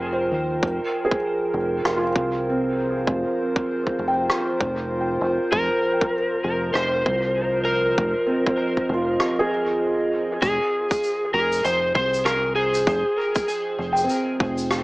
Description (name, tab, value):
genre	ambient dub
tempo	98 BPM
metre	4/4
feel	swing 59% on 16ths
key	F minor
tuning	A4 = 440 Hz
part	electric slide guitar	melody	0.0-0.3, 5.5-14.4 s	Ab4 to C5	-24 LUFS	equal	dub echo
part	warbly tape-like pad	sustained chords	0.0-14.8 s	F3 to G5	-26 LUFS	equal	chorus, built-in reverb
part	felt-muted upright piano	arpeggios	0.0-14.8 s	C4 to G5	-26 LUFS	right 1 dB	dub echo
part	deep dub fingered electric bass	bass	0.0-14.8 s	F1 to Eb2	-29 LUFS	equal	none
part	electronic kick drum	drums	0.6-14.5 s	none	-24 LUFS	equal	overdrive
part	rim click and shaker	drums	1.9-14.8 s	none	-28 LUFS	equal	dub echo
room	moderate spring reverb, RT60 1.5 s, small room ambience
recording	small speaker sound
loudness	-20 LUFS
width	side -21 dB against mid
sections	0.0-10.4 A section; 10.4-14.8 A section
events	none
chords	0.0 Fm7